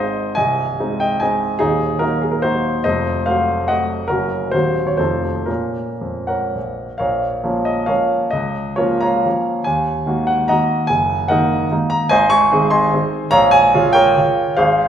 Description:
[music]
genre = classical, romantic triple-time dance for piano with dotted rhythms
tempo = 102-156 BPM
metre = 3/4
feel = rubato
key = Bb minor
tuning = A4 = 442 Hz
[part]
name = warm grand piano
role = solo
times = 0.0-14.9 s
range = C1 to Db6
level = -15 LUFS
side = equal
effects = none
[sound]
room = wet recital hall reverb, RT60 1.4 s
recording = recorded in a church or concert hall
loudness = -15 LUFS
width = side -9 dB against mid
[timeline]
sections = 0.0-7.0 A section; 7.0-14.9 B section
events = none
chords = 0.4 Ab/C; 1.6 Cm7b5/Eb; 2.9 F7b9; 4.1 Gb; 4.5 Cdim/Eb; 5.0 F7; 5.5 Bbm; 8.3 Bbm/Db; 9.7 Ebm; 10.9 Ebm/Gb; 12.1 Ab; 13.3 Bbm

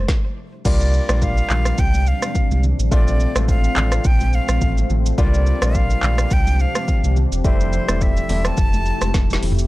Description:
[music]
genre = afrobeats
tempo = 106 BPM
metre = 4/4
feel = swing 55% on 16ths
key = C mixolydian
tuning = A4 = 440 Hz
[part]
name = deep dark ambient pad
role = sustained chords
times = 0.0-9.7 s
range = C3 to G4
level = -28 LUFS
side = left 1 dB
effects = chorus, built-in reverb
[part]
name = sub bass with octave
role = bass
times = 0.0-9.7 s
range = E1 to C2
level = -18 LUFS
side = equal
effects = none
[part]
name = afro-pop drum kit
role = drums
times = 0.1-9.7 s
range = crash cymbal, handclaps, hi-hat, kick drum, rim click, shaker, snare drum, toms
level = -20 LUFS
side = equal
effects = none
[part]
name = warm baby grand piano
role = accompaniment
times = 0.6-8.6 s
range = G3 to F4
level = -27 LUFS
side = left 3 dB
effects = none
[part]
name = breathy bright jazz flute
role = melody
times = 0.7-9.4 s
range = C5 to A5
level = -26 LUFS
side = equal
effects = none
[part]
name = congas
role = percussion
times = 1.1-9.6 s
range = none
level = -32 LUFS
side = right 2 dB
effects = none
[sound]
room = little or no reverb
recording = dry, gritty hardware recording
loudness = -16 LUFS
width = side -18 dB against mid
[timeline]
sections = 0.7-9.7 A section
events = stop 0.1-0.7; drum fill 9.1-9.7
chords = 0.0 N.C.; 0.7 C9sus4; 2.9 Bbmaj7; 5.2 C9sus4; 7.4 Fmaj9

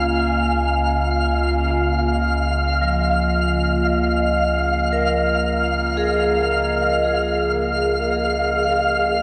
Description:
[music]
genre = ambient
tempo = 57 BPM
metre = 4/4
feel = straight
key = unclear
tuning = A4 = 440 Hz
[part]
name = warbly tape-like pad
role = sustained chords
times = 0.0-9.2 s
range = Db3 to Eb5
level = -27 LUFS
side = equal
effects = chorus, built-in reverb, cassette tape, shimmer reverb
[part]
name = vibraphone with hard mallets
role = arpeggios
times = 0.0-9.2 s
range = F3 to Ab5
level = -26 LUFS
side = equal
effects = cassette tape, tape echo, shimmer reverb
[part]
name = round analog bass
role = bass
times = 0.0-9.2 s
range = Db2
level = -26 LUFS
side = equal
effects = none
[part]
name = twinkling granular texture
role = texture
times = 0.0-9.2 s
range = F5 to F6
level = -24 LUFS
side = equal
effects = built-in reverb, cassette tape, shimmer reverb
[sound]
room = wet lush hall reverb, RT60 2.6 s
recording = home recording on cassette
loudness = -20 LUFS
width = mono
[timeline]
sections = 0.0-9.2 A section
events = none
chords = 0.0 Db69

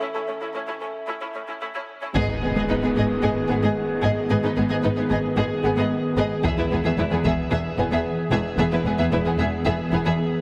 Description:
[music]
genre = cinematic, hybrid orchestral and electronic film score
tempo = 112 BPM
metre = 4/4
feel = straight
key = G# phrygian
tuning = A4 = 442 Hz
[part]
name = warm symphonic viola section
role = accompaniment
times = 0.0-10.1 s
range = A3 to E4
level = -33 LUFS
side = equal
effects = none
[part]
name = warbly tape-like pad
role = sustained chords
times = 0.0-10.4 s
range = D#3 to E5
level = -29 LUFS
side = equal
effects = chorus, built-in reverb
[part]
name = thumb-piano-like synth pluck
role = arpeggios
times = 0.0-10.1 s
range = E3 to A4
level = -33 LUFS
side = equal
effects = none
[part]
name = rich symphonic cello section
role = bass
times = 0.0-10.1 s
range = E2 to A2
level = -31 LUFS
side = equal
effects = none
[part]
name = warm symphonic violin section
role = melody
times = 2.2-10.1 s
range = G#4 to E5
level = -32 LUFS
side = equal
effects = none
[part]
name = rich symphonic violin section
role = second line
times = 2.2-10.1 s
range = B3 to G#4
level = -31 LUFS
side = equal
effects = none
[part]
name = rich symphonic double bass section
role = bass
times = 2.2-10.0 s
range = E1 to G#1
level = -31 LUFS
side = equal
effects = none
[part]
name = taiko ensemble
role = drums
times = 2.2-3.2, 6.4-7.5 s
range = none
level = -35 LUFS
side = equal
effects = none
[part]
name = impact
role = sound effects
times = 2.2-4.3 s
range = none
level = -36 LUFS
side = equal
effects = none
[sound]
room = wet scoring stage reverb, RT60 2.0 s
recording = heavily compressed radio sound, multiband compression, high-pass filter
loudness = -23 LUFS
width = mono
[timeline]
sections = 0.0-2.2 A section; 2.2-10.4 B section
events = build-up 0.0-2.2; filter sweep 0.0-2.2; band accent 2.2-2.7; impact 2.2-4.3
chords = 0.0 A; 2.2 G#m; 6.4 E

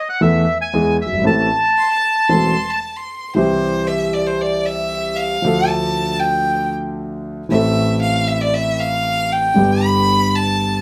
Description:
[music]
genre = tango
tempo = 116 BPM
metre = 4/4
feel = rubato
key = A minor, C major from 3.4 s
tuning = A4 = 440 Hz
[part]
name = bandoneon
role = melody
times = 0.0-2.8 s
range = E5 to A5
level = -19 LUFS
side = equal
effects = none
[part]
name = warm concert grand piano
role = accompaniment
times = 0.2-10.8 s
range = E1 to A4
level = -20 LUFS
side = equal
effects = none
[part]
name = bright violin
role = second line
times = 1.8-10.8 s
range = C5 to C6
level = -22 LUFS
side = equal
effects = none
[sound]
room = moderate club reverb, RT60 0.6 s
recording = none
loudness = -17 LUFS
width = mono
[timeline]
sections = 0.0-3.4 A section; 3.4-10.8 B section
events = violin solo 3.4-10.8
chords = 0.2 Esus4; 0.7 E; 1.3 Am; 3.4 C; 5.4 Dm; 7.5 Am; 9.6 G

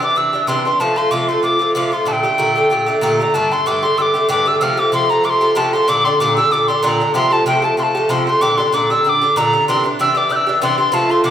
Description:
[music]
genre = celtic folk, Celtic reel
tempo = 190 BPM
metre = 4/4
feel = swing 54% on 8ths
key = G dorian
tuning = A4 = 437 Hz
[part]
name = breathy mellow tin whistle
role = melody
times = 0.0-11.3 s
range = G5 to G6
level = -16 LUFS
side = left 1 dB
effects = none
[part]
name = Irish bouzouki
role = accompaniment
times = 0.0-11.3 s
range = G2 to G4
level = -17 LUFS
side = right 1 dB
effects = none
[sound]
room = wet recital hall reverb, RT60 1.6 s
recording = recorded in a church or concert hall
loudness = -13 LUFS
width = side -9 dB against mid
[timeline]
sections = 0.0-3.3 A section; 3.3-11.3 A section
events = none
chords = 0.0 Cadd9; 0.8 F; 2.1 Gmadd9; 3.3 Gsus2; 4.6 Fadd9; 5.9 Gm; 7.1 Fadd9; 8.4 Gm; 9.7 Cadd9

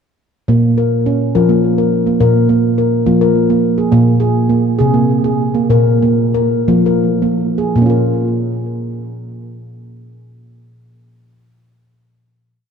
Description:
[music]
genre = world meditative, meditative tuned percussion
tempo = 52-70 BPM (dotted quarters)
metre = 6/8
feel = straight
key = Bb minor pentatonic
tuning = A4 = 441 Hz
[part]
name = handpan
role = solo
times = 0.5-12.1 s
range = Bb2 to Bb4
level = -12 LUFS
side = equal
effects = tape echo
[sound]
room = wet echo chamber reverb, RT60 2.2 s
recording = dark, warm production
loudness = -11 LUFS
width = side -7 dB against mid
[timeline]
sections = 0.5-7.8 A section; 7.8-12.4 final chord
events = slowing down 3.9-7.8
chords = 0.5 Bb5; 3.9 Abadd9/Bb; 5.7 Bb5; 7.8 Bbm

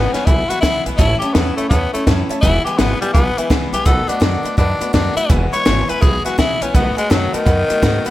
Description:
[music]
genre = rockabilly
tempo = 167 BPM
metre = 4/4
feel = swing 64% on 8ths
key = E major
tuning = A4 = 440 Hz
[part]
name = growling tenor saxophone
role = melody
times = 0.0-8.1 s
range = D#3 to C#5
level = -19 LUFS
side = left 2 dB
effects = tape echo
[part]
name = picked steel-string acoustic guitar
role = accompaniment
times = 0.0-8.1 s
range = E2 to F#4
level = -24 LUFS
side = left 2 dB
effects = none
[part]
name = warm upright piano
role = accompaniment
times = 0.0-8.1 s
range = B4 to B5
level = -27 LUFS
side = right 4 dB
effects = none
[part]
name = upright bass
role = bass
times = 0.0-8.1 s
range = E1 to G#2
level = -19 LUFS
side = right 1 dB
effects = none
[part]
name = compact cocktail drum kit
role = drums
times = 0.1-8.1 s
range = hi-hat, kick drum, snare drum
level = -16 LUFS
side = equal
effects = none
[sound]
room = studio reverb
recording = none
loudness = -13 LUFS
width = side -15 dB against mid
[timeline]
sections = 0.0-8.1 A section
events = none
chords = 0.0 E; 1.0 A; 2.4 E; 3.9 B7; 5.3 E; 6.7 B7

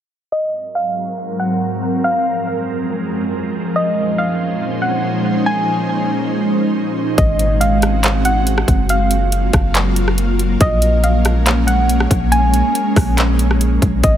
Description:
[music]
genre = hip hop, atmospheric cloud-rap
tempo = 140 BPM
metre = 4/4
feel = half-time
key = Bb minor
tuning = A4 = 440 Hz
[part]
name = soft round pluck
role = melody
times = 0.3-14.2 s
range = Eb5 to Ab5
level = -20 LUFS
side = equal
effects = chorus, low-pass filter, digital delay
[part]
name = ethereal airy pad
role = sustained chords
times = 0.9-14.2 s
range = Gb2 to C5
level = -18 LUFS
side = right 1 dB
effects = ensemble chorus, built-in reverb, sidechain pumping, low-pass filter
[part]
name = long sustained 808-style bass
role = bass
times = 7.2-14.2 s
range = Gb1 to Bb1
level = -16 LUFS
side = equal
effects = none
[part]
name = trap drum kit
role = drums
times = 7.2-14.1 s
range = handclaps, hi-hat, kick drum, rim click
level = -17 LUFS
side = equal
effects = none
[sound]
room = light reverb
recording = none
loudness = -14 LUFS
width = side -10 dB against mid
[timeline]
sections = 0.3-7.2 A section; 7.2-14.2 B section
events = filter sweep 0.3-7.2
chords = 0.3 Ab9; 2.0 Gbmaj9#11; 3.8 Bbm11; 7.2 Ab7; 8.9 Gbmaj7; 10.6 Bbm7

